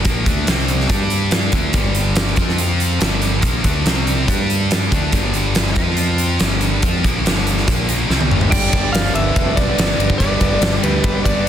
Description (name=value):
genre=hard rock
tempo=142 BPM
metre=4/4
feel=straight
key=unclear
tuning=A4 = 440 Hz
part: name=heavy high-gain guitar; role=riff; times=0.0-11.5 s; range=G2 to G4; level=-20 LUFS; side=equal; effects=distortion
part: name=fuzz fingered electric bass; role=bass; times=0.0-11.5 s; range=F1 to G2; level=-20 LUFS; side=equal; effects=overdrive
part: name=huge arena drum kit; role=drums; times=0.0-11.4 s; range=crash cymbal, hi-hat, kick drum, ride cymbal, snare drum, toms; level=-18 LUFS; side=equal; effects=none
part: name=lightly driven lead guitar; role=melody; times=8.5-11.5 s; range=B4 to G5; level=-22 LUFS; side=equal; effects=none
part: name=dark smooth lead guitar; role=second line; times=8.5-11.5 s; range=G4 to D5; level=-27 LUFS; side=right 4 dB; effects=overdrive
part: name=overdriven tonewheel organ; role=sustained chords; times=8.5-11.5 s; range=G3 to A4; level=-31 LUFS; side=equal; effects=none
room=little or no reverb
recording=dense, heavily limited modern master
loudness=-14 LUFS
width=side -10 dB against mid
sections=0.0-8.5 A section; 8.5-11.5 B section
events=drum fill 8.1-8.5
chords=0.5 C5; 0.9 G5; 2.4 F5; 3.0 G5; 3.9 C5; 4.3 G5; 5.8 F5; 6.4 G5; 7.7 Bb5; 8.1 G5; 8.5 G